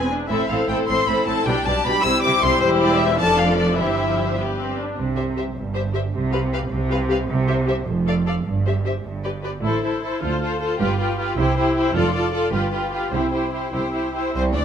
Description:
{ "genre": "quick classical-period movement for string orchestra", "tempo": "103 BPM (dotted quarters)", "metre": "6/8", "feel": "straight", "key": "C major", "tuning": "A4 = 440 Hz", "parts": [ { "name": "rich chamber violin section", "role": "melody", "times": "0.0-14.6 s", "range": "B4 to E6", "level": "-24 LUFS", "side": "left 3 dB", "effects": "none" }, { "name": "rich chamber violin section", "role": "second line", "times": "0.0-14.6 s", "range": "C4 to D5", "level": "-26 LUFS", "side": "left 2 dB", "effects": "none" }, { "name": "warm symphonic viola section", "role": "accompaniment", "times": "0.0-14.3 s", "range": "E3 to A4", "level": "-24 LUFS", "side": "equal", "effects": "none" }, { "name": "rich chamber cello section", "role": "bass", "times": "0.0-14.6 s", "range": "C2 to C3", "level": "-25 LUFS", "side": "right 3 dB", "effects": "none" }, { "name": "rich chamber double bass section", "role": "bass", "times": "0.0-14.6 s", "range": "E1 to D2", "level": "-27 LUFS", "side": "right 3 dB", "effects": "none" } ], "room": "moderate recital hall reverb, RT60 1.4 s", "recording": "none", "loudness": "-18 LUFS", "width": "side -8 dB against mid", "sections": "0.0-5.0 A section; 5.0-14.3 B section", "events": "none", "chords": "0.3 Am; 1.5 G; 2.0 C; 2.6 C/E; 3.2 Dm/F; 3.8 C/G; 4.4 G; 5.0 C; 6.1 G7/C; 7.9 Dm/F; 8.5 C/G; 9.6 Am; 10.2 Dm7; 10.8 G7; 11.4 C; 12.0 Dm/F; 12.5 G7; 13.1 C", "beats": "| 0.30 0.88 | 1.46 2.04 | 2.62 3.19 | 3.78 4.37 | 4.97 5.55 | 6.13 6.71 | 7.29 7.87 | 8.46 9.04 | 9.64 10.23 | 10.81 11.38 | 11.96 12.54 | 13.13 13.73 | 14.34" }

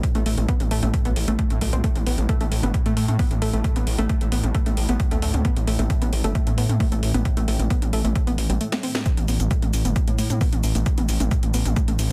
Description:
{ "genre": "driving peak-time techno", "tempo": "133 BPM", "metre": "4/4", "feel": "straight", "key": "unclear", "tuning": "A4 = 440 Hz", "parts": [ { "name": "swarming drone", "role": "drone", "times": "0.0-12.1 s", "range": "A2", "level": "-32 LUFS", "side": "equal", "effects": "built-in reverb, sidechain pumping" }, { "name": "electronic kick drum", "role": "drums", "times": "0.0-11.9 s", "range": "none", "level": "-25 LUFS", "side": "equal", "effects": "none" }, { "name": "techno drum kit", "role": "drums", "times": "0.0-12.1 s", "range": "hi-hat, shaker, snare drum, toms", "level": "-32 LUFS", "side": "equal", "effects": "none" }, { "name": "warbly dusty pluck", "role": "riff", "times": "0.2-11.9 s", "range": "G3 to C4", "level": "-31 LUFS", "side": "equal", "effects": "chorus, tube saturation, sidechain pumping, digital delay" }, { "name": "gritty driven synth bass", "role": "bass", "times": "0.2-12.1 s", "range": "G1 to A2", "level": "-26 LUFS", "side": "equal", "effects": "sidechain pumping" } ], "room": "light reverb", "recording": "dense, heavily limited modern master", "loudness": "-22 LUFS", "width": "mono", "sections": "0.0-12.1 A section", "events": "break 8.6-9.1; drum fill 8.7-9.1", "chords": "0.0 Gadd9 (rootless)", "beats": "| 0.04 0.49 0.94 1.39 | 1.84 2.29 2.74 3.19 | 3.64 4.10 4.55 5.00 | 5.45 5.90 6.35 6.80 | 7.25 7.71 8.16 8.61 | 9.06 9.51 9.96 10.41 | 10.86 11.31 11.77" }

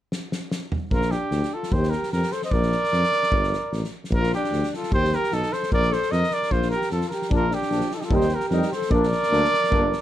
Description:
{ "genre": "balkan folk, Balkan brass band", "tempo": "150 BPM", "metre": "2/4", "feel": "swing 54% on 16ths", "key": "Bb major", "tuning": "A4 = 440 Hz", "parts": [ { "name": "loose indie drum kit", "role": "percussion", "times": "0.1-10.0 s", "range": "kick drum, snare drum, toms", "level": "-28 LUFS", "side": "equal", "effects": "none" }, { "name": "warm trumpet", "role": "melody", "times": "0.9-10.0 s", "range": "G4 to Eb5", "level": "-24 LUFS", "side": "right 2 dB", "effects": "none" }, { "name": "mellow alto saxophone", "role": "second line", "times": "0.9-10.0 s", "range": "D4 to C5", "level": "-28 LUFS", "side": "left 3 dB", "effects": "none" }, { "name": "mellow tuba", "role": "bass", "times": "0.9-9.9 s", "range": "G1 to F2", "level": "-25 LUFS", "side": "left 1 dB", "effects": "none" }, { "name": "bright trombone", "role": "accompaniment", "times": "7.3-9.9 s", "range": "D4 to Eb4", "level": "-29 LUFS", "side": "left 4 dB", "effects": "none" }, { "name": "warm euphonium", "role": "accompaniment", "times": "7.3-9.9 s", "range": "F3 to Bb3", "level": "-28 LUFS", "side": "right 4 dB", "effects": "none" } ], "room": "light reverb", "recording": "dark, warm production", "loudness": "-20 LUFS", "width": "side -12 dB against mid", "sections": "0.9-7.3 A section; 7.3-10.0 A section", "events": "drum fill 0.1-0.9", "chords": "0.1 N.C.; 0.9 Bb; 1.7 Eb69; 2.5 Bb; 3.3 Gm; 4.1 Bb; 4.9 B7b9b13; 5.7 Bb5; 7.3 Bb; 8.1 Eb; 8.9 Bb", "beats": "| 0.11 0.51 | 0.91 1.31 | 1.71 2.11 | 2.51 2.91 | 3.31 3.71 | 4.11 4.51 | 4.92 5.32 | 5.72 6.12 | 6.52 6.92 | 7.32 7.72 | 8.12 8.52 | 8.92 9.32 | 9.72" }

